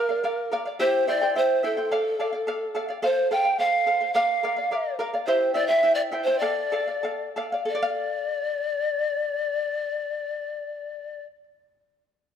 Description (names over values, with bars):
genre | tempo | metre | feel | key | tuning
andean folk, Andean ensemble | 86-108 BPM | 2/4 | straight | D minor | A4 = 440 Hz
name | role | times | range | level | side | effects
breathy mellow pan flute | melody | 0.0-11.2 s | A4 to G5 | -24 LUFS | equal | none
charango | accompaniment | 0.0-11.4 s | E4 to G5 | -27 LUFS | equal | none
room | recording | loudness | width
moderate recital hall reverb, RT60 1.5 s | none | -22 LUFS | side -8 dB against mid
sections
0.0-7.7 A section; 7.7-10.5 B section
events
slowing down 5.3-7.7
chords
0.0 Bb; 0.8 C; 1.9 Dm; 3.0 F; 4.2 Bb; 5.3 C; 6.4 Dm